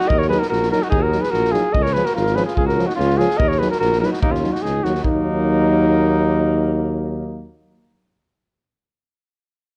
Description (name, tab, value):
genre	balkan folk, Balkan brass band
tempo	146 BPM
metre	2/4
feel	straight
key	Eb minor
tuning	A4 = 440 Hz
part	mellow flugelhorn	melody	0.0-7.4 s	Eb4 to Eb5	-23 LUFS	equal	none
part	warm alto saxophone	second line	0.0-7.5 s	Bb3 to Bb4	-29 LUFS	equal	none
part	unplugged drum kit	percussion	0.0-5.2 s	kick drum, snare drum	-27 LUFS	equal	none
part	mellow tuba	bass	0.1-7.5 s	Ab1 to Eb2	-24 LUFS	equal	none
part	warm euphonium	accompaniment	0.3-7.4 s	Db4 to Eb4	-28 LUFS	equal	none
part	warm euphonium	accompaniment	0.3-7.5 s	F3 to Gb3	-28 LUFS	equal	none
room	light reverb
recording	worn, warbling old tape, cassette tape, warbly pitch drift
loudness	-18 LUFS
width	mono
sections	0.0-5.0 A section; 5.0-6.7 B section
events	none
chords	0.0 Ebm; 1.8 Db; 3.4 Ebm